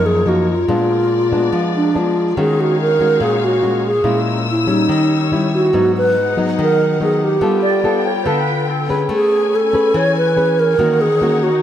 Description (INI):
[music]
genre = bossa nova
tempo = 143 BPM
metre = 4/4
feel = straight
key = Eb minor, G# minor from 5.7 s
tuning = A4 = 439 Hz
[part]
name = mellow hollow wooden-headed alto flute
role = melody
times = 0.0-11.6 s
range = D4 to C#5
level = -16 LUFS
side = right 1 dB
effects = none
[part]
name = nylon-string guitar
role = accompaniment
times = 0.0-11.6 s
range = F#2 to B4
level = -18 LUFS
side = left 2 dB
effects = none
[part]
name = warm studio string section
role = sustained chords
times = 0.0-11.6 s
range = B3 to Fb6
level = -25 LUFS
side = left 5 dB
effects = none
[part]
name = mellow small flute group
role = second line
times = 7.6-9.0 s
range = A4 to D5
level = -23 LUFS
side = equal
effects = none
[sound]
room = moderate plate reverb, RT60 3.4 s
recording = none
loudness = -13 LUFS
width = side -10 dB against mid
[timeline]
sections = 0.0-5.7 A section; 5.7-11.6 B section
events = none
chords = 0.0 Bmaj9#11 (rootless); 0.7 Bb7b9; 2.4 Ebm11; 4.0 Bbm7b5; 4.9 Eb7b9; 5.7 G#m7; 7.4 G9; 9.1 Amaj9; 10.8 D#m7